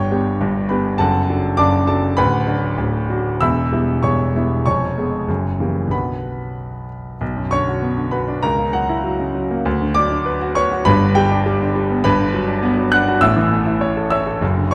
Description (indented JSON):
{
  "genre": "classical, virtuoso piano study",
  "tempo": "92-103 BPM",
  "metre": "2/4",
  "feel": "rubato",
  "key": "B minor",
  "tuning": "A4 = 442 Hz",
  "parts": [
    { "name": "warm grand piano", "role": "solo", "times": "0.0-14.7 s", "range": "D1 to F#6", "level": "-18 LUFS", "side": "equal", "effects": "none" }
  ],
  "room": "moderate concert hall reverb, RT60 2.2 s",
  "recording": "dark, warm production",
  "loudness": "-18 LUFS",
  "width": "mono",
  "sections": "0.0-7.2 A section; 7.2-14.7 B section",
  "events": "none",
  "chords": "0.0 G; 1.0 D/F#; 2.2 Bm/D; 3.4 Em; 4.7 C#7/E#; 5.3 F#7b9; 5.9 Bm; 8.4 F#7/C#; 9.7 Bm/D; 10.9 G; 12.1 Gmaj7; 13.2 A"
}